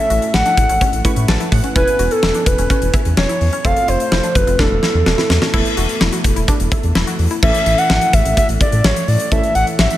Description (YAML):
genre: synth-pop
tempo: 127 BPM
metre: 4/4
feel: straight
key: A major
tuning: A4 = 442 Hz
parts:
  - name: hollow clarinet-like synth lead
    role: melody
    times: 0.0-10.0 s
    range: A4 to F#5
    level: -18 LUFS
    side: equal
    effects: chorus, digital delay, shimmer reverb
  - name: warm analog keys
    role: accompaniment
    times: 0.0-10.0 s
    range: E3 to C#6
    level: -24 LUFS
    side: right 1 dB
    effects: chorus, shimmer reverb
  - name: analog pluck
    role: arpeggios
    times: 0.0-7.4 s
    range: C4 to F#4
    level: -27 LUFS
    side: left 3 dB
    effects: chorus, digital delay, shimmer reverb
  - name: round analog bass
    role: bass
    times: 0.1-9.9 s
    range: E1 to A2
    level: -18 LUFS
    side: equal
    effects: none
  - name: huge arena drum kit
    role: drums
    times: 0.1-10.0 s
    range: crash cymbal, hi-hat, kick drum, snare drum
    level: -17 LUFS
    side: equal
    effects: none
room: light reverb, studio reverb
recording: none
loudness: -13 LUFS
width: side -14 dB against mid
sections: 0.0-5.5 A section; 5.5-7.4 B section; 7.4-10.0 C section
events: synth keys fill 0.8-1.8; drum fill 4.6-5.5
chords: 0.0 A; 1.8 E6; 3.6 F; 4.6 Esus4; 7.4 A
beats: 0.34 0.81 1.28 | 1.76 2.23 2.70 3.17 | 3.65 4.12 4.59 5.06 | 5.54 6.01 6.48 6.95 | 7.43 7.90 8.37 8.84 | 9.32 9.79